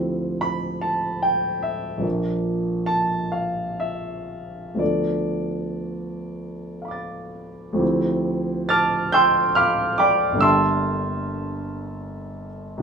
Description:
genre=classical, impressionist solo piano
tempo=58-78 BPM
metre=3/4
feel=rubato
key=D minor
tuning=A4 = 439 Hz
part: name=warm concert grand piano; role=solo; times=0.0-12.8 s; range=G1 to A6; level=-21 LUFS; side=right 1 dB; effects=none
room=moderate studio reverb, RT60 0.8 s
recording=small room ambience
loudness=-20 LUFS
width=side -6 dB against mid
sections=0.0-7.8 A section; 7.8-12.8 A section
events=none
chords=0.0 Dm11; 2.0 Bb; 4.8 Dm6; 7.8 Dm11; 10.4 Gm6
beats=0.43 1.23 | 2.04 2.89 3.82 | 4.80 5.81 6.81 | 7.81 8.70 9.57 | 10.43 11.27 12.09

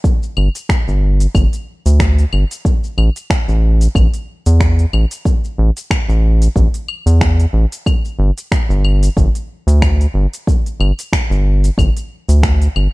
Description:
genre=organic downtempo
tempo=92 BPM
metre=4/4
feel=swing 56% on 16ths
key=unclear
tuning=A4 = 440 Hz
part: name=electronic kick drum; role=drums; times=0.0-12.6 s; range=none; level=-15 LUFS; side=equal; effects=studio reverb
part: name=organic electronic drum kit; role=drums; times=0.0-12.9 s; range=claves, finger snaps, hi-hat, shaker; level=-24 LUFS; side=left 1 dB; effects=studio reverb
part: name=round analog bass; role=bass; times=0.4-12.9 s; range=G1 to E2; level=-11 LUFS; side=equal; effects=sidechain pumping
room=digital ambience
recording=dark, warm production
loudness=-12 LUFS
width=side -22 dB against mid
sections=0.0-12.9 A section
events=none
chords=none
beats=| 0.04 0.69 1.34 2.00 | 2.65 3.30 3.95 4.61 | 5.26 5.91 6.56 7.21 | 7.87 8.52 9.17 9.82 | 10.48 11.13 11.78 12.43

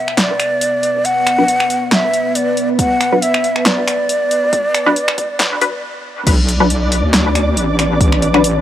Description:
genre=deep dubstep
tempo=138 BPM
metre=4/4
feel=swing 54% on 16ths, half-time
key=B minor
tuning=A4 = 440 Hz
part: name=breathy ney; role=melody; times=0.0-5.8 s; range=D5 to F#5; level=-16 LUFS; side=equal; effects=dub echo
part: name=deep dark ambient pad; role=sustained chords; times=0.0-8.6 s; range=B3 to B4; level=-23 LUFS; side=equal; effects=chorus, built-in reverb
part: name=deep house drum kit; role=drums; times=0.1-8.5 s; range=crash cymbal, finger snaps, handclaps, hi-hat, snare drum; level=-17 LUFS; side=equal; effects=overdrive
part: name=filtered dub chord stab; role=stabs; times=1.4-8.4 s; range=F#3 to B4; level=-18 LUFS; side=left 2 dB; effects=phaser, dub echo
part: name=electronic kick drum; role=drums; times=2.8-8.1 s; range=none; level=-15 LUFS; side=equal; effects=overdrive
part: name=wobble bass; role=bass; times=6.3-8.6 s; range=A1 to D2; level=-16 LUFS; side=equal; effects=chorus
part: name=flickering grainy texture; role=texture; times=6.5-8.6 s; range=D4 to D5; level=-20 LUFS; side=equal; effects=built-in reverb
room=light reverb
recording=dry, gritty hardware recording, vinyl crackle, high-pass filter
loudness=-12 LUFS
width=side -11 dB against mid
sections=0.0-6.3 A section; 6.3-8.6 B section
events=build-up 0.0-6.3; filter sweep on synth stab 0.0-6.3; stop 5.8-6.3; drop 6.3-8.6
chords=0.0 Bm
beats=0.18 0.61 | 1.05 1.48 1.92 2.35 | 2.79 3.22 3.66 4.09 | 4.53 4.96 5.40 5.83 | 6.27 6.70 7.14 7.57 | 8.01 8.44

